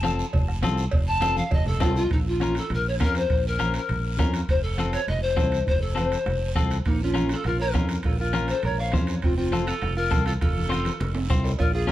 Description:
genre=latin, cumbia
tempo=202 BPM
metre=4/4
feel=straight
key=Bb harmonic minor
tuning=A4 = 440 Hz
part: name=breathy bright pan flute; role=melody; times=0.0-11.9 s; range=Eb4 to A5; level=-28 LUFS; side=left 2 dB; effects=tape echo
part: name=clean electric guitar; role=accompaniment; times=0.0-11.9 s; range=C4 to C5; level=-31 LUFS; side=left 5 dB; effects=none
part: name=fingered electric bass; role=bass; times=0.0-11.9 s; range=F1 to F2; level=-27 LUFS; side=equal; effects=none
part: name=bombo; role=percussion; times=0.0-11.9 s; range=none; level=-26 LUFS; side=right 1 dB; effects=none
part: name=congas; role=percussion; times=0.0-11.9 s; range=none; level=-33 LUFS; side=equal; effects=none
part: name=cowbell and timbales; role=percussion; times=0.0-11.9 s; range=none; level=-38 LUFS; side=right 4 dB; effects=none
part: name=guiro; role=percussion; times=0.0-11.9 s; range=none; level=-42 LUFS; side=right 6 dB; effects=none
part: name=clean electric guitar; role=second line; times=6.9-11.9 s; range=Bb3 to Db5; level=-32 LUFS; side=right 3 dB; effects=none
room=light reverb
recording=dark, warm production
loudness=-22 LUFS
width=side -14 dB against mid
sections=0.0-2.1 A section; 2.1-11.6 B section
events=pan flute solo 0.0-2.1; drum fill 1.2-2.1, 10.4-11.6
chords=0.0 F; 2.1 Bbm; 4.5 F; 6.9 Bbm; 9.2 F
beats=0.04 0.34 0.63 | 0.93 1.22 1.52 1.81 | 2.11 2.41 2.70 3.00 | 3.30 3.59 3.89 4.19 | 4.49 4.78 5.08 5.38 | 5.67 5.97 6.27 6.56 | 6.86 7.16 7.45 7.75 | 8.05 8.34 8.64 8.94 | 9.23 9.53 9.82 10.12 | 10.42 10.71 11.01 11.30 | 11.60 11.90

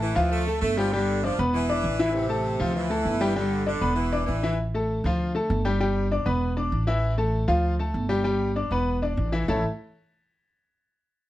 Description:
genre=latin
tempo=196 BPM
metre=4/4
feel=straight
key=unclear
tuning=A4 = 440 Hz
part: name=bright saxophone section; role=second line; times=0.0-4.6 s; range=C3 to A3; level=-29 LUFS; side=right 2 dB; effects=none
part: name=bright baby grand piano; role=accompaniment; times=0.0-9.6 s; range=E3 to D6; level=-25 LUFS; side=left 2 dB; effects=none
part: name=upright bass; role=bass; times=0.0-9.6 s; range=E1 to D2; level=-27 LUFS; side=right 1 dB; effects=none
room=moderate studio reverb, RT60 0.6 s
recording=dark, warm production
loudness=-22 LUFS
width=side -15 dB against mid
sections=0.0-4.6 A section; 4.6-9.5 B section; 9.5-10.7 C section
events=none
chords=0.3 Dm; 0.9 G; 1.5 E5; 2.1 Am; 2.8 Dm; 3.4 G; 4.0 E5; 4.6 Dm/A; 5.2 Dm; 5.8 G; 6.4 E5; 7.0 A5; 7.6 Dm; 8.3 G; 8.9 E5; 9.5 A5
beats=0.00 0.31 0.61 | 0.92 1.22 1.53 1.83 | 2.14 2.44 2.75 3.06 | 3.36 3.67 3.97 4.28 | 4.58 4.89 5.20 5.50 | 5.81 6.11 6.42 6.72 | 7.03 7.33 7.64 7.95 | 8.25 8.56 8.86 9.17 | 9.47

